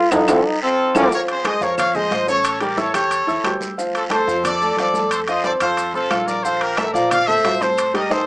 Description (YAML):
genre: latin, salsa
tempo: 180 BPM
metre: 4/4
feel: straight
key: unclear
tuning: A4 = 440 Hz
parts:
  - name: clear trombone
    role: melody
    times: 0.0-1.1 s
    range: C4 to F4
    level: -18 LUFS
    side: equal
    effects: tape echo
  - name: clear concert grand piano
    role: accompaniment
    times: 0.1-8.2 s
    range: F3 to G6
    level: -20 LUFS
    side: equal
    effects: none
  - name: upright bass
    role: bass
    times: 0.1-8.2 s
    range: A1 to Bb2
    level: -34 LUFS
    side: equal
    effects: none
  - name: claves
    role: percussion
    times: 0.1-7.9 s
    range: none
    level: -32 LUFS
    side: left 1 dB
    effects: none
  - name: congas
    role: percussion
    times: 0.1-8.3 s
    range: none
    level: -30 LUFS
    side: equal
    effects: none
  - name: guiro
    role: percussion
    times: 0.1-8.3 s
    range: none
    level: -34 LUFS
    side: right 2 dB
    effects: none
  - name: maracas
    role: percussion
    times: 0.1-8.3 s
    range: none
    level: -36 LUFS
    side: left 1 dB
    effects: none
  - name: timbales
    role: percussion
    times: 0.1-8.1 s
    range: none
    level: -24 LUFS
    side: right 1 dB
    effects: none
  - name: brilliant trumpet section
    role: melody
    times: 0.6-8.3 s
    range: F4 to F5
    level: -20 LUFS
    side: equal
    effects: none
room: wet studio ambience, RT60 0.5 s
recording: rough home demo mix, small speaker sound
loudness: -16 LUFS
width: side -23 dB against mid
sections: 0.0-1.1 A section; 1.1-8.3 B section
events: band accent 0.0-1.1; trombone solo 0.0-1.1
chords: 0.0 Fmaj7; 1.1 Bbm9 (rootless); 2.5 A7; 3.8 Dm7; 5.1 F